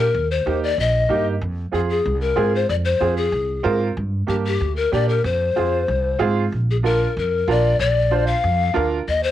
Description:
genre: latin, cumbia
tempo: 188 BPM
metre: 4/4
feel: straight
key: unclear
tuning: A4 = 440 Hz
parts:
  - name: breathy polished pan flute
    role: melody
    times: 0.0-9.3 s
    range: G4 to F5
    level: -20 LUFS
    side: left 4 dB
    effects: none
  - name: clear upright piano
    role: accompaniment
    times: 0.0-9.0 s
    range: Bb3 to C5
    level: -23 LUFS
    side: right 6 dB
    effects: none
  - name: upright bass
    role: bass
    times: 0.0-9.3 s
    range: Bb1 to Bb2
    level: -22 LUFS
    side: right 1 dB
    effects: none
room: moderate small room reverb, RT60 0.5 s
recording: home recording on cassette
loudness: -18 LUFS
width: side -12 dB against mid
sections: 0.0-6.5 A section; 6.5-9.3 B section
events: none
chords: 0.1 Eb; 1.4 Fm; 4.0 Gm; 5.2 Fm; 6.5 Bb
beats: | 0.14 0.46 0.78 1.09 | 1.41 1.73 2.05 2.37 | 2.69 3.01 3.33 3.65 | 3.97 4.29 4.61 4.92 | 5.24 5.56 5.88 6.20 | 6.52 6.84 7.16 7.48 | 7.79 8.11 8.43 8.75 | 9.07

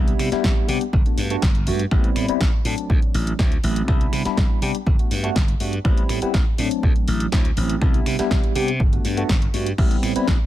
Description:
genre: filtered disco house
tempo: 122 BPM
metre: 4/4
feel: straight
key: A dorian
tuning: A4 = 440 Hz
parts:
  - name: tine electric piano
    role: accompaniment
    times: 0.0-10.3 s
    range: F#3 to G4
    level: -25 LUFS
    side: left 1 dB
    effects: medium stereo tremolo, phaser, vintage 12-bit sampler grit, sidechain pumping
  - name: glassy slap bass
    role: bass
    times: 0.0-10.4 s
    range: G1 to C3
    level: -24 LUFS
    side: equal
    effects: tube saturation, sidechain pumping
  - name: house drum kit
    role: drums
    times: 0.1-10.4 s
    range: crash cymbal, finger snaps, hi-hat, snare drum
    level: -28 LUFS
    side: equal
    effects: small room ambience, sidechain pumping on hats, sidechain pumping on cymbals
  - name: electronic kick drum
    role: drums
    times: 0.4-10.4 s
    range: none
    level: -19 LUFS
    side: equal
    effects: small room ambience
room: digital ambience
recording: none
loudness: -18 LUFS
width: side -13 dB against mid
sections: 0.0-10.5 A section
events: none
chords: 0.0 Cmaj7; 0.9 Gmaj7; 1.9 Am7; 2.9 D9; 3.9 Cmaj7; 4.9 Gmaj7; 5.8 Am7; 6.8 D9; 7.8 Cmaj7; 8.8 Gmaj7; 9.8 Am7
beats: 0.44 0.93 1.42 | 1.92 2.41 2.90 3.39 | 3.88 4.37 4.87 5.36 | 5.85 6.34 6.83 7.33 | 7.82 8.31 8.80 9.29 | 9.78 10.28

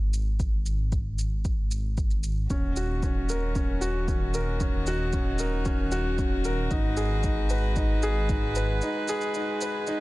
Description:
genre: piano and strings electronica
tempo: 114 BPM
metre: 4/4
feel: straight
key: Eb minor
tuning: A4 = 440 Hz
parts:
  - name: dark detuned saw bass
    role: bass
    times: 0.0-8.8 s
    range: Eb1 to Ab1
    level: -28 LUFS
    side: equal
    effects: tube saturation, sidechain pumping
  - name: shaker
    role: drums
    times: 0.1-10.0 s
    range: none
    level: -39 LUFS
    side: right 2 dB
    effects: none
  - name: electronic kick drum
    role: drums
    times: 0.4-8.4 s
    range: none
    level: -28 LUFS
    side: equal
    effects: overdrive
  - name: rich string quartet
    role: sustained chords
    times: 2.5-10.0 s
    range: Eb3 to Cb5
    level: -34 LUFS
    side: equal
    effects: sidechain pumping
  - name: warm grand piano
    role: riff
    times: 2.5-10.0 s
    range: Db4 to Cb5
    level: -29 LUFS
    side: equal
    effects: ping-pong delay
room: small room ambience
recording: none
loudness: -24 LUFS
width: side -19 dB against mid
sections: 0.0-10.0 A section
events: break 8.8-10.0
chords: 0.0 N.C.; 2.5 Ebm7; 6.7 Abm7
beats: | 0.40 0.92 1.45 1.98 | 2.50 3.03 3.56 4.08 | 4.61 5.13 5.66 6.19 | 6.71 7.24 7.76 8.29 | 8.82 9.34 9.87

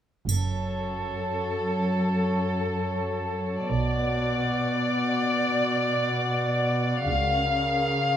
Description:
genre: cinematic, suspense film score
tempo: free time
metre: none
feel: none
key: F# minor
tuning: A4 = 441 Hz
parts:
  - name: muted chamber violin section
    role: melody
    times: 0.3-8.2 s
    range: A4 to E#5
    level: -27 LUFS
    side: left 2 dB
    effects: none
  - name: glass harmonica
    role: sustained chords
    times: 0.3-8.2 s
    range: F#4 to A5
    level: -31 LUFS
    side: right 1 dB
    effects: none
  - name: muted chamber cello section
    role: bass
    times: 0.3-8.2 s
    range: F#2 to C#3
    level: -28 LUFS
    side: equal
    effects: none
  - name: muted symphonic double bass section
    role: bass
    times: 0.3-7.9 s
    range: F#1 to C#2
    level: -29 LUFS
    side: right 3 dB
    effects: none
  - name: triangle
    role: percussion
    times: 0.3-2.0 s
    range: none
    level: -36 LUFS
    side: right 3 dB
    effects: none
room: moderate recital hall reverb, RT60 1.4 s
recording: close, detailed microphones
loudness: -24 LUFS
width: side -10 dB against mid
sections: 0.3-8.2 A section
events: none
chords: 0.3 F#m; 3.7 Bm; 7.1 C#6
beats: free time

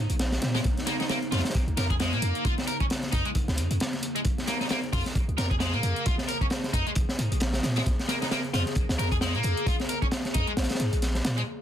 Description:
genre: breakbeat, breaks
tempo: 133 BPM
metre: 4/4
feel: swing 58% on 16ths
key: Bb minor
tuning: A4 = 440 Hz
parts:
  - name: warbly tape-like pad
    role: sustained chords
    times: 0.0-11.6 s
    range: Db3 to Ab4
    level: -36 LUFS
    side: left 1 dB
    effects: chorus, built-in reverb, sidechain pumping
  - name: warm 808-style bass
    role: bass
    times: 0.0-11.4 s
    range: Bb1 to Bb2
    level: -28 LUFS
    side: equal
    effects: none
  - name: crunchy breakbeat drum kit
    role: drums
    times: 0.1-11.4 s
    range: hi-hat, kick drum, snare drum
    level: -28 LUFS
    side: equal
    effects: none
  - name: electronic hi-hat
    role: drums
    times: 0.1-11.5 s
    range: none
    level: -39 LUFS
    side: left 1 dB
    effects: none
  - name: overdriven electric guitar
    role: riff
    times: 0.5-11.4 s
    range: Ab3 to Bb4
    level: -31 LUFS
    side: equal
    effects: low-pass filter, tape echo
room: light reverb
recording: dense, heavily limited modern master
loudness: -24 LUFS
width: side -10 dB against mid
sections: 0.0-11.5 A section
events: none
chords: 0.0 Bbm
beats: 0.19 | 0.64 1.09 1.55 2.00 | 2.45 2.90 3.35 3.80 | 4.25 4.70 5.16 5.61 | 6.06 6.51 6.96 7.41 | 7.86 8.31 8.76 9.21 | 9.67 10.12 10.57 11.02 | 11.47

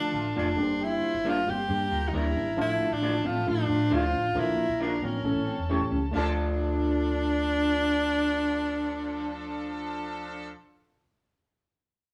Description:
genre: soul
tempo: 135 BPM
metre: 4/4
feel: straight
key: D minor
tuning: A4 = 444 Hz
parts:
  - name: breathy tenor saxophone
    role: melody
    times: 0.0-10.5 s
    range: C#4 to G4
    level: -30 LUFS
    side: equal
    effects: none
  - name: mellow horn section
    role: second line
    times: 0.0-10.5 s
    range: F3 to A4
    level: -42 LUFS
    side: equal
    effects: none
  - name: warm studio string section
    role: second line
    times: 0.0-10.5 s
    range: F4 to C6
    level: -43 LUFS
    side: equal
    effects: none
  - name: reed electric piano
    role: accompaniment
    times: 0.0-10.6 s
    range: D3 to Bb4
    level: -36 LUFS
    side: equal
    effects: fast tremolo
  - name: clean electric guitar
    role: riff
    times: 0.0-7.4 s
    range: Bb3 to G4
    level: -40 LUFS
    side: equal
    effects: none
  - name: hollow-body short-scale fingered electric bass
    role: bass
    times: 0.0-10.5 s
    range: E1 to D3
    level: -35 LUFS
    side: equal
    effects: none
  - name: electric guitar through a small old amp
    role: stabs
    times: 0.4-10.6 s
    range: C#4 to D5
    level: -35 LUFS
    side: equal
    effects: none
room: moderate studio reverb, RT60 0.9 s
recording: band playing live in one room, small room ambience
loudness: -28 LUFS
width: mono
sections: 0.0-6.1 A section; 6.1-9.7 B section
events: none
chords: 0.0 Dm; 0.6 Gm; 2.6 Dm/A; 4.4 Bb; 5.2 A; 6.1 Dm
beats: 0.36 | 0.80 1.25 1.69 2.13 | 2.58 3.02 3.47 3.91 | 4.36 4.80 5.25 5.70 | 6.14 6.58 7.03 7.48 | 7.92 8.37 8.81 9.26

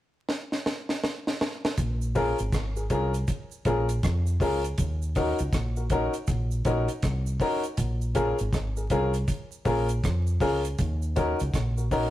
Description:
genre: roots reggae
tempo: 80 BPM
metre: 4/4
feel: swing 62% on 16ths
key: Bb minor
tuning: A4 = 440 Hz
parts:
  - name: deep reggae drum kit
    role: drums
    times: 0.3-12.1 s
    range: hi-hat, kick drum, rim click, snare drum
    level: -29 LUFS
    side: equal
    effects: none
  - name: deep dub fingered electric bass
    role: bass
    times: 1.8-12.1 s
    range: Ab1 to F2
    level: -28 LUFS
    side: equal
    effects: none
  - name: cabasa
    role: percussion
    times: 1.8-12.1 s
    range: none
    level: -47 LUFS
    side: right 8 dB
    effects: none
  - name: clear upright piano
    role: stabs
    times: 2.1-12.1 s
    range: Db4 to Bb4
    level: -28 LUFS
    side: left 2 dB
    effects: none
room: moderate stone room reverb, RT60 1.1 s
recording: rough rehearsal-room recording, vinyl crackle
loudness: -24 LUFS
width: side -14 dB against mid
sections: 0.0-1.8 A section; 1.8-12.1 B section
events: drum fill 0.3-1.8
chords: 0.0 N.C.; 1.8 Bbm7; 4.8 Ebm7; 7.8 Bbm7; 10.8 Ebm7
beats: 0.28 1.03 | 1.78 2.53 3.28 4.03 | 4.78 5.53 6.28 7.03 | 7.79 8.54 9.29 10.04 | 10.79 11.54

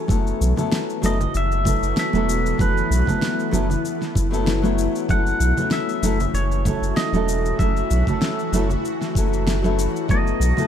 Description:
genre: sunset chillout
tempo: 96 BPM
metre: 4/4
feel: swing 54% on 16ths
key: unclear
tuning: A4 = 440 Hz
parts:
  - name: flamenco guitar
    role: accompaniment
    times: 0.0-10.7 s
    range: F#3 to C#5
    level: -25 LUFS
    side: moving between left 6 dB and right 7 dB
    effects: auto-pan
  - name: shimmering ambient pad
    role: sustained chords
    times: 0.0-10.7 s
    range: E3 to E5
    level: -27 LUFS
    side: left 3 dB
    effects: chorus, built-in reverb
  - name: round analog bass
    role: bass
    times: 0.1-10.5 s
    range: E1 to B1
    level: -22 LUFS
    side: equal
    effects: none
  - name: electronic kick drum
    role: drums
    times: 0.1-10.2 s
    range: none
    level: -22 LUFS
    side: equal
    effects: small room reverb
  - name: electronic shaker and snare drum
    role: drums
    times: 0.1-10.7 s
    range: none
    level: -27 LUFS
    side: left 1 dB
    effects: small room reverb
  - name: congas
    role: percussion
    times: 0.1-10.7 s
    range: none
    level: -27 LUFS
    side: right 3 dB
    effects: none
  - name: pedal steel guitar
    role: melody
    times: 1.1-10.7 s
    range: B4 to F#5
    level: -26 LUFS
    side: left 1 dB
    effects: tape echo
room: light reverb, digital ambience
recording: dark, warm production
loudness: -18 LUFS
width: side -9 dB against mid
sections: 0.0-10.7 A section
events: none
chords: 0.1 B7sus4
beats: | 0.10 0.72 1.35 1.97 | 2.60 3.22 3.85 4.47 | 5.10 5.72 6.35 6.97 | 7.60 8.22 8.85 9.47 | 10.10

